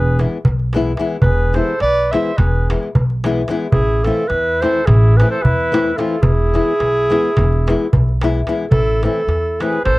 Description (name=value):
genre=balkan folk, Balkan wedding band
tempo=217 BPM (eighths)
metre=9/8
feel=straight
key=unclear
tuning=A4 = 439 Hz
part: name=warm clarinet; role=melody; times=0.0-10.0 s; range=G#4 to E5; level=-18 LUFS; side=right 1 dB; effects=none
part: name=mellow trumpet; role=second line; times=0.0-10.0 s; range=E4 to C5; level=-26 LUFS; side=left 1 dB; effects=none
part: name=upright bass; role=bass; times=0.0-10.0 s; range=E1 to E2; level=-16 LUFS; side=equal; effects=none
part: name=darbuka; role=percussion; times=0.0-10.0 s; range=none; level=-19 LUFS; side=equal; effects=none
part: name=nylon-string guitar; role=accompaniment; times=0.2-9.8 s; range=E3 to E4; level=-19 LUFS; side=left 3 dB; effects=none
room=little or no reverb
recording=cassette tape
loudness=-13 LUFS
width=side -20 dB against mid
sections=0.0-8.7 A section; 8.7-10.0 B section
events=none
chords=0.0 E; 3.7 Am; 6.2 E; 8.7 Am